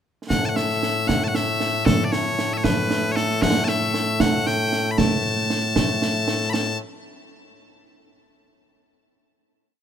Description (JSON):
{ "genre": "scottish traditional, Scottish pipe music", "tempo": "77 BPM (dotted quarters)", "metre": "6/8", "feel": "straight", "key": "A mixolydian", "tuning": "A4 = 440 Hz", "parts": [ { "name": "loud bright bagpipes", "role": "melody", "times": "0.3-6.8 s", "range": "A2 to B5", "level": "-22 LUFS", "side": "left 2 dB", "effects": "none" }, { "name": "concert snare drum and concert bass drum", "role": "drums", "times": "0.3-6.8 s", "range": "none", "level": "-23 LUFS", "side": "right 2 dB", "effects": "none" } ], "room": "little or no reverb", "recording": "minimal, uncompressed stereo recording", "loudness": "-19 LUFS", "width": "side -8 dB against mid", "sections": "0.3-6.5 A section; 6.5-8.1 final note", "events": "none", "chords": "none" }